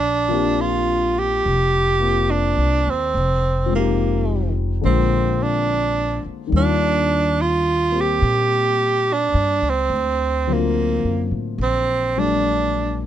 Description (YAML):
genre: jazz ballad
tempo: 71 BPM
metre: 4/4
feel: swing 68% on 8ths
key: Bb major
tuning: A4 = 439 Hz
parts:
  - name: breathy tenor saxophone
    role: melody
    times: 0.0-13.0 s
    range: Bb3 to G4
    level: -20 LUFS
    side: right 3 dB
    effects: none
  - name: upright bass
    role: bass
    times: 0.0-13.1 s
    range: F1 to Bb2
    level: -22 LUFS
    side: equal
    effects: none
  - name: warm concert grand piano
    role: accompaniment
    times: 0.3-13.1 s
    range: D3 to G4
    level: -24 LUFS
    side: left 7 dB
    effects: none
room: little or no reverb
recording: close, detailed microphones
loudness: -17 LUFS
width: side -11 dB against mid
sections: 0.0-13.1 A section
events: none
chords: 0.0 Bb69; 3.1 Fm9; 4.8 Bb9; 6.5 Ebmaj9; 9.9 D7alt